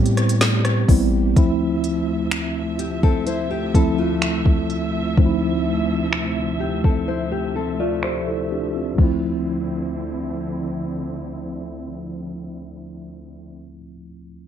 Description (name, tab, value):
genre	contemporary R&B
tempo	63 BPM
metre	4/4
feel	straight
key	D minor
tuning	A4 = 440 Hz
part	mellow tine electric piano	accompaniment	0.0-14.5 s	D2 to D5	-23 LUFS	equal	medium stereo tremolo
part	rich studio string section	sustained chords	0.0-13.6 s	D2 to E5	-30 LUFS	right 2 dB	stereo widening, sidechain pumping
part	long sustained 808-style bass	bass	0.0-1.3 s	A1 to A2	-19 LUFS	equal	none
part	smooth R&B drum kit	drums	0.1-9.2 s	crash cymbal, finger snaps, hi-hat, kick drum, rim click, snare drum	-18 LUFS	equal	none
part	nylon-string guitar	arpeggios	2.8-9.2 s	A3 to C5	-27 LUFS	left 10 dB	tape echo
room	light reverb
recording	dark, warm production, low-pass filter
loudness	-18 LUFS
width	side -9 dB against mid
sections	0.0-1.4 A section; 1.4-9.0 B section; 9.0-12.8 C section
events	break 7.1-9.0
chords	0.0 Am9; 1.4 Dm9